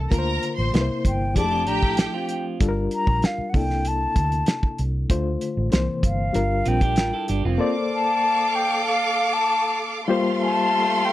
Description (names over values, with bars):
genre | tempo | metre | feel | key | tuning
lush 1970s-style soul | 96 BPM | 4/4 | straight | unclear | A4 = 439 Hz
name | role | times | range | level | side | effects
barky reed electric piano | accompaniment | 0.0-11.1 s | C3 to D5 | -26 LUFS | left 4 dB | overdrive, fast tremolo
vintage muted fingered electric bass | bass | 0.0-7.6 s | F1 to D2 | -25 LUFS | right 1 dB | none
warm studio violin section | second line | 0.1-2.3, 7.6-11.1 s | A3 to D6 | -25 LUFS | right 1 dB | none
cloth-damped thuddy drum kit | drums | 0.1-7.4 s | hi-hat, kick drum, snare drum | -21 LUFS | right 1 dB | none
mellow hollow concert flute | melody | 1.1-11.1 s | F5 to Bb5 | -23 LUFS | left 1 dB | none
electric guitar through a small old amp | riff | 1.4-2.6, 6.7-7.7 s | A3 to Bb4 | -28 LUFS | right 6 dB | none
room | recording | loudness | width
little or no reverb | dry, close 1970s-style studio recording | -20 LUFS | side -14 dB against mid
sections
0.0-7.6 A section; 7.6-11.1 B section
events
none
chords
0.1 Bbmaj9/D; 0.7 C7; 1.4 F69; 2.6 Gm7; 3.5 C13; 5.1 F6; 5.7 C7; 6.3 Gm7; 7.6 Bbmaj9; 10.1 Gm11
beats
| 0.11 0.74 1.36 1.98 | 2.61 3.23 3.85 4.48 | 5.10 5.72 6.35 6.97 | 7.60 8.22 8.84 9.47 | 10.09 10.71